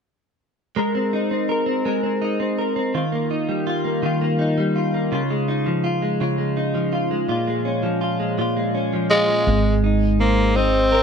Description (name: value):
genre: pop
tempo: 55 BPM (dotted quarters)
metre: 6/8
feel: straight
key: Ab major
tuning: A4 = 439 Hz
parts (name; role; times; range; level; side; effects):
- direct-recorded clean electric guitar; accompaniment; 0.8-11.0 s; Bb2 to Bb4; -20 LUFS; equal; double-tracked left and right
- growling tenor saxophone; melody; 9.1-11.0 s; Ab3 to C4; -18 LUFS; equal; none
- upright bass; bass; 9.5-11.0 s; Ab1; -19 LUFS; equal; none
room: studio reverb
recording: dry, close 1970s-style studio recording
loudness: -18 LUFS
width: side -6 dB against mid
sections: 0.8-9.5 A section; 9.5-11.0 B section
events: none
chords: 0.8 Abadd9; 3.0 Ebadd9; 5.1 Dbadd9; 7.3 Bbm7; 9.5 Abadd9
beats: | 0.77 1.86 | 2.95 4.04 | 5.12 6.20 | 7.29 8.38 | 9.47 10.56